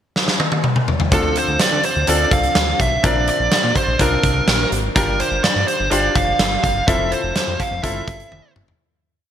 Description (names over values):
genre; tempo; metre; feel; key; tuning
1980s-style pop; 125 BPM; 4/4; straight; D minor; A4 = 445 Hz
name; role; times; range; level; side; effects
big rock drum kit; drums; 0.2-8.8 s; hi-hat, kick drum, snare drum, toms; -19 LUFS; equal; gated reverb
fuzz lead guitar; melody; 1.1-8.5 s; A4 to F5; -19 LUFS; right 2 dB; distortion
bright grand piano; accompaniment; 1.1-8.8 s; C4 to C5; -23 LUFS; left 2 dB; none
fat analog bass; bass; 1.1-8.7 s; F1 to D3; -23 LUFS; equal; none
room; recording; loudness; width
moderate lush hall reverb, RT60 1.8 s, studio ambience; bright 1980s-style digital production; -15 LUFS; side -9 dB against mid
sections
0.0-1.1 pickup bar; 1.1-8.8 verse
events
drum fill 0.2-1.1, 8.3-8.8; fade-out 6.9-8.8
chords
0.0 N.C.; 1.1 Dm7; 3.0 Bbadd9; 5.0 Gm7; 6.9 Fmaj7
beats
0.16 0.64 | 1.12 1.60 2.08 2.56 | 3.04 3.52 4.00 4.48 | 4.96 5.44 5.92 6.40 | 6.88 7.36 7.84 8.32